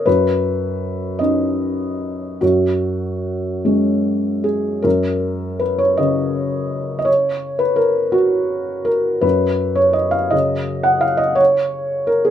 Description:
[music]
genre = neoclassical minimalist piano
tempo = 48-57 BPM (dotted quarters)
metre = 6/8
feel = rubato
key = F# major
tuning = A4 = 440 Hz
[part]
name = felt-muted upright piano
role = solo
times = 0.0-12.3 s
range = F#2 to F#5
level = -16 LUFS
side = equal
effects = none
[sound]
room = light reverb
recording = minimal, uncompressed stereo recording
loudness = -16 LUFS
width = side -10 dB against mid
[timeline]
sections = 0.0-4.8 A section; 4.8-12.3 A section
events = none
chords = 0.1 Badd9/F#; 2.4 F#sus2; 4.8 F#6

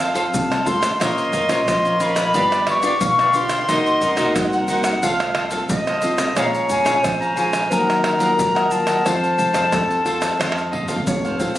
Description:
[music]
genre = samba and choro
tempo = 89 BPM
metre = 4/4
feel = straight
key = unclear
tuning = A4 = 442 Hz
[part]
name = warm clarinet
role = second line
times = 0.0-11.6 s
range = A4 to Gb5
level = -23 LUFS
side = right 1 dB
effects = none
[part]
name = cavaquinho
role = accompaniment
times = 0.0-11.6 s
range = Eb4 to Bb5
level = -25 LUFS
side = right 1 dB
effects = none
[part]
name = nylon-string guitar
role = accompaniment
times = 0.0-11.6 s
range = Bb2 to C5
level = -25 LUFS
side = left 1 dB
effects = none
[part]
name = upright bass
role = bass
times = 0.0-11.6 s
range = Eb1 to Gb2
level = -30 LUFS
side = right 1 dB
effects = none
[part]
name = egg shaker, surdo, pandeiro and tamborim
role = percussion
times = 0.2-11.6 s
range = none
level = -24 LUFS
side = right 1 dB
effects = none
[part]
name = breathy hollow silver concert flute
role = melody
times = 0.3-11.1 s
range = F5 to Db6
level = -20 LUFS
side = left 2 dB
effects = none
[sound]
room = light reverb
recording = recorded on a phone in the room, studio reverb, compression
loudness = -16 LUFS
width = side -14 dB against mid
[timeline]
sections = 0.0-11.6 A section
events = drum fill 10.4-11.6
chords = 0.0 F; 1.0 Bbmadd9; 2.3 G7; 3.7 Cm7b5; 5.0 F/C; 6.4 Bbm7; 7.7 Ebmadd9; 9.1 F

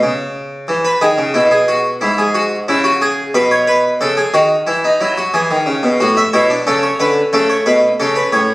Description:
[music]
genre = classical, baroque-style 3-part fugue for harpsichord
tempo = 90 BPM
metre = 4/4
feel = straight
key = A major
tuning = A4 = 440 Hz
[part]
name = harpsichord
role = solo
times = 0.0-8.5 s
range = G#2 to E5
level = -12 LUFS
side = equal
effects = none
[sound]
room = moderate large studio reverb, RT60 0.9 s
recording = recorded on a phone in the room, studio reverb, compression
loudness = -12 LUFS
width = side -20 dB against mid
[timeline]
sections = 0.0-6.0 A section; 6.0-8.5 B section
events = none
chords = 0.0 N.C.; 0.7 E; 2.0 E/G#; 3.3 B; 4.7 E; 6.0 A

